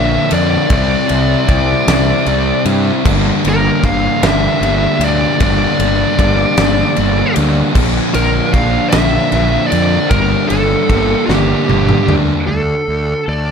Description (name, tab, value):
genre	quiet-loud alternative rock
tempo	51 BPM (dotted quarters)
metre	6/8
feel	straight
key	G dorian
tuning	A4 = 442 Hz
part	high-gain lead guitar	melody	0.0-13.5 s	G4 to F5	-18 LUFS	equal	distortion, analog delay
part	sludgy distorted guitar	riff	0.0-12.5 s	G2 to E4	-18 LUFS	left 16 dB	overdrive
part	thick fuzz guitar	riff	0.0-12.5 s	G2 to E4	-18 LUFS	right 13 dB	distortion
part	fuzz fingered electric bass	bass	0.0-13.5 s	G1 to G2	-18 LUFS	equal	overdrive
part	big rock drum kit	drums	0.3-12.3 s	crash cymbal, kick drum, ride cymbal, snare drum, toms	-18 LUFS	equal	none
part	twelve-string electric guitar	arpeggios	12.5-13.5 s	D3 to A4	-25 LUFS	left 5 dB	ensemble chorus
room	little or no reverb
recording	none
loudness	-11 LUFS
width	side -6 dB against mid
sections	0.0-12.5 A section; 12.5-13.5 B section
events	drum fill 11.3-12.5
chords	0.0 Bb; 0.7 C; 3.1 Gm; 7.8 Bb; 10.1 Gm; 12.5 D5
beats	| 0.71 1.88 | 3.06 4.23 | 5.41 6.58 | 7.76 8.93 | 10.11 11.29 | 12.47